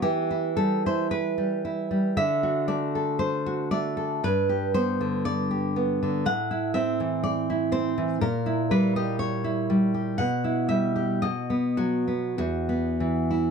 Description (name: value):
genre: romantic piece for solo classical guitar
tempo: 58 BPM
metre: 4/4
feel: uneven beats, rubato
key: E minor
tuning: A4 = 439 Hz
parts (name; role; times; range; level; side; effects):
- nylon-string guitar; solo; 0.0-13.5 s; E2 to F#5; -23 LUFS; equal; none
room: light reverb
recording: close, detailed microphones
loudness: -23 LUFS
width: side -6 dB against mid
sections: 0.0-13.5 A section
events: none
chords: 0.0 Em; 2.2 D; 4.2 G; 6.3 Am; 8.2 A#dim7; 10.2 Em/B; 11.2 B; 12.4 E5